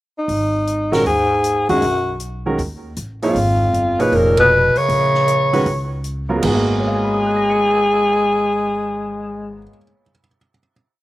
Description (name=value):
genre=modal jazz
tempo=156 BPM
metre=4/4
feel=swing 66% on 8ths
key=G# dorian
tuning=A4 = 436 Hz
part: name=growling alto saxophone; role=melody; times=0.2-9.7 s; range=D#4 to C#5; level=-16 LUFS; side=equal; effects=none
part: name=upright bass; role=bass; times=0.3-9.7 s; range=E#1 to D#2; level=-24 LUFS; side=equal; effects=none
part: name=swinging big-band drum kit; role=drums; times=0.3-6.5 s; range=crash cymbal, hi-hat, kick drum, ride cymbal, snare drum, toms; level=-31 LUFS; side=equal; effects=none
part: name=breathy bass clarinet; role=second line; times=0.9-9.6 s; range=E#2 to G#3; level=-23 LUFS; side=left 2 dB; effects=none
part: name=clear baby grand piano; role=accompaniment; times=0.9-10.7 s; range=G#2 to C#7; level=-21 LUFS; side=right 2 dB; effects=none
room=little or no reverb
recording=none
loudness=-15 LUFS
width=side -16 dB against mid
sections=0.0-0.3 pickup bar; 0.3-6.4 A section; 6.4-9.5 final chord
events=band accent 4.3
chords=0.3 G#m7; 3.4 A#m; 6.4 G#m9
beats=| 0.28 0.67 1.05 1.44 | 1.82 2.20 2.59 2.97 | 3.36 3.74 4.12 4.51 | 4.89 5.28 5.66 6.05 | 6.43 6.82 7.20 7.58 | 7.97 8.35 8.73 9.12